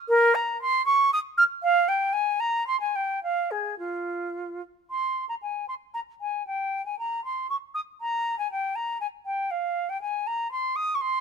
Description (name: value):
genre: classical, baroque-style fantasia for unaccompanied flute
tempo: 104-121 BPM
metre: 3/4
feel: rubato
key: F minor, Ab major from 4.9 s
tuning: A4 = 439 Hz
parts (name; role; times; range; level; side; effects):
- silver concert flute; solo; 0.1-11.2 s; F4 to F6; -24 LUFS; right 1 dB; none
room: light reverb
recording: close, detailed microphones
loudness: -24 LUFS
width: side -6 dB against mid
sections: 0.0-4.9 A section; 4.9-11.2 A section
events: none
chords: none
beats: | 0.08 0.60 1.11 | 1.62 2.12 2.66 | 3.22 3.79 4.36 | 4.91 5.43 5.95 | 6.46 6.98 7.50 | 8.00 8.51 9.01 | 9.51 10.02 10.52 | 11.02